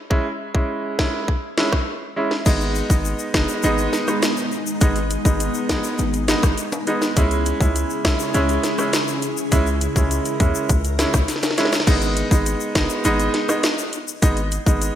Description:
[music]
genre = dancehall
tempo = 102 BPM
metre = 4/4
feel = straight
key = G# minor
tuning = A4 = 440 Hz
[part]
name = clear grand piano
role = accompaniment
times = 0.1-15.0 s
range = G#3 to E4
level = -22 LUFS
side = right 1 dB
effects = sidechain pumping
[part]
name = island pop drum kit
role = drums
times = 0.1-15.0 s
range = crash cymbal, hi-hat, kick drum, rim click, snare drum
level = -20 LUFS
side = equal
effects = gated reverb
[part]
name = ethereal airy pad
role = sustained chords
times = 3.2-11.8 s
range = C#3 to A#4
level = -28 LUFS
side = equal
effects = ensemble chorus, built-in reverb, tremolo, sidechain pumping
[part]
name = hard-hitting 808-style bass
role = bass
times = 2.5-14.9 s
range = F#1 to D#2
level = -22 LUFS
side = equal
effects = none
[part]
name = tube shaker and timbales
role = percussion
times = 2.5-15.0 s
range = none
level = -31 LUFS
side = left 7 dB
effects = none
[sound]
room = moderate lush hall reverb, RT60 1.6 s, digital ambience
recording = bright 1980s-style digital production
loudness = -18 LUFS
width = side -10 dB against mid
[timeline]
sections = 0.0-2.5 A section; 2.5-11.9 B section; 11.9-15.0 C section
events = drum fill 11.3-11.9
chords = 0.0 C#m; 2.5 G#m; 7.2 C#m; 11.9 G#m

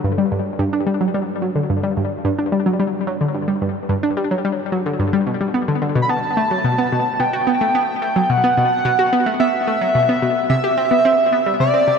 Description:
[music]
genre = ambient, sequencer-driven space music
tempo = 109 BPM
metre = 4/4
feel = straight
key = G major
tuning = A4 = 440 Hz
[part]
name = analog pluck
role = riff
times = 0.0-12.0 s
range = G2 to G4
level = -18 LUFS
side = equal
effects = chorus, ping-pong delay
[part]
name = pulse-width lead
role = melody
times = 6.0-12.0 s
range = D5 to B5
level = -16 LUFS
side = right 1 dB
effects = chorus, ping-pong delay
[sound]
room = wet huge ambient reverb, RT60 6.9 s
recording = in a vast, echoing space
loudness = -16 LUFS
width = side -6 dB against mid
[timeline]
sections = 0.0-12.0 A section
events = none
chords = 0.0 Gmaj7(no3); 6.1 B5; 10.5 C

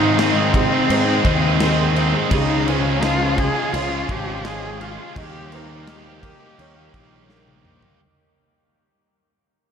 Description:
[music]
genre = post-rock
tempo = 84 BPM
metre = 4/4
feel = straight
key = unclear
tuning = A4 = 439 Hz
[part]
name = muted cello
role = melody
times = 0.0-7.3 s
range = C4 to Ab4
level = -24 LUFS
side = equal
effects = diffuse ambient delay
[part]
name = felt-muted upright piano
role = arpeggios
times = 0.0-8.0 s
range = Ab4 to Eb5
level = -31 LUFS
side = right 4 dB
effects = ensemble chorus, diffuse ambient delay
[part]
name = twangy electric guitar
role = arpeggios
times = 0.0-8.0 s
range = Db3 to G4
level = -32 LUFS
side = left 2 dB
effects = none
[part]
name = distorted electric guitar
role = riff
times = 0.0-8.0 s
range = Ab2 to Ab4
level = -24 LUFS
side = right 9 dB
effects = overdrive
[part]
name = sludgy distorted guitar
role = riff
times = 0.0-8.0 s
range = Ab2 to F4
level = -25 LUFS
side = left 8 dB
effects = overdrive
[part]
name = fuzz picked electric bass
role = bass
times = 0.0-7.8 s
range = Ab1 to Ab2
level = -23 LUFS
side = equal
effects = overdrive
[part]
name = big rock drum kit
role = drums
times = 0.2-8.0 s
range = crash cymbal, kick drum, snare drum, toms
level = -24 LUFS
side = equal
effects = none
[sound]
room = wet cathedral reverb, RT60 6.5 s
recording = dreamy mix soaked in reverb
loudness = -16 LUFS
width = side -7 dB against mid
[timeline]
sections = 0.0-8.0 A section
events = fade-out 0.0-8.0; drum fill 7.3-8.0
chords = 0.0 Ab; 2.3 Dbmaj7; 5.2 Eb7

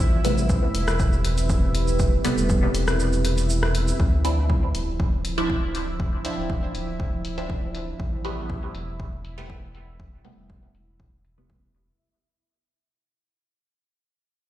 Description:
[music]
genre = dub techno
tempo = 120 BPM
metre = 4/4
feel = straight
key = D minor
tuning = A4 = 440 Hz
[part]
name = deep dark ambient pad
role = sustained chords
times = 0.0-12.0 s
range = F3 to C5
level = -31 LUFS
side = right 1 dB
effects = chorus, built-in reverb, sidechain pumping
[part]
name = round analog bass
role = bass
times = 0.0-11.9 s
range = D1 to D2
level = -26 LUFS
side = equal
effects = sidechain pumping
[part]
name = electronic kick drum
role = drums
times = 0.0-11.6 s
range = none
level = -24 LUFS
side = equal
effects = none
[part]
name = punchy analog drum machine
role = drums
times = 0.0-11.9 s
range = cabasa, hi-hat, rim click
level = -31 LUFS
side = left 1 dB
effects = low-pass filter on perc, low-pass filter on hats, low-pass filter on snare, low-pass filter on room, dub echo
[part]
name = bubbling stepped-filter texture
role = texture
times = 0.0-12.0 s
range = E4 to E5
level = -36 LUFS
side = right 2 dB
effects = chorus, built-in reverb, sidechain pumping
[part]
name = filtered dub chord stab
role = stabs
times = 0.2-12.0 s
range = C3 to E4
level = -29 LUFS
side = right 1 dB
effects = phaser, sidechain pumping, dub echo
[sound]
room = light reverb, digital ambience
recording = played on a big sound system in a bare room, large studio reverb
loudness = -21 LUFS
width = side -13 dB against mid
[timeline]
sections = 0.0-4.0 A section; 4.0-12.0 B section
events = kick drops out 3.0-4.0; fade-out 4.0-12.0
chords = 0.0 Am9; 4.0 Dm9; 8.0 Am9

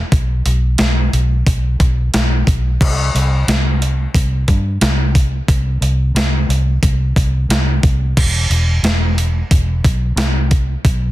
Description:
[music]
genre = rock, shoegaze and dream pop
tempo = 89 BPM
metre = 4/4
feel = straight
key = unclear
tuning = A4 = 440 Hz
[part]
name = vintage muted fingered electric bass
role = bass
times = 0.0-11.1 s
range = E1 to G2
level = -15 LUFS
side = equal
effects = none
[part]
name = crisp 8-bit digital drum machine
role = drums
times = 0.1-11.0 s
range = crash cymbal, hi-hat, kick drum, snare drum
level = -16 LUFS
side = equal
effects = overdrive
[sound]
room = little or no reverb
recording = dense, heavily limited modern master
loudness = -13 LUFS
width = side -16 dB against mid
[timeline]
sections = 0.0-11.1 A section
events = none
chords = none

